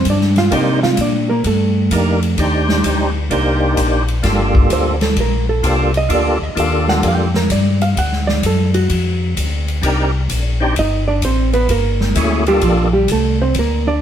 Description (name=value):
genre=soul jazz organ trio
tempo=129 BPM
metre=4/4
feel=swing 67% on 8ths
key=G minor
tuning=A4 = 441 Hz
part: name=hollow-body jazz guitar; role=accompaniment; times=0.0-14.0 s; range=F3 to G5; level=-18 LUFS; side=right 4 dB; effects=none
part: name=mellow tonewheel organ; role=bass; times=0.0-14.0 s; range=G1 to C3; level=-17 LUFS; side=left 1 dB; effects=overdrive, slow rotary speaker
part: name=swinging big-band drum kit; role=drums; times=0.1-13.7 s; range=hi-hat, kick drum, ride cymbal, snare drum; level=-20 LUFS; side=left 1 dB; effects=none
part: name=percussive tonewheel organ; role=melody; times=0.5-12.9 s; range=A3 to C5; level=-18 LUFS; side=equal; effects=slow rotary speaker, overdrive, chorus vibrato
room=moderate stone room reverb, RT60 1.0 s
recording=band playing live in one room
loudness=-13 LUFS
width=side -9 dB against mid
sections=0.0-14.0 A section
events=hollow-body jazz guitar solo 0.0-14.0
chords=0.0 G7(no3); 0.5 Cm7; 4.2 Gm7; 8.0 D; 9.8 Cm7; 11.7 Gm7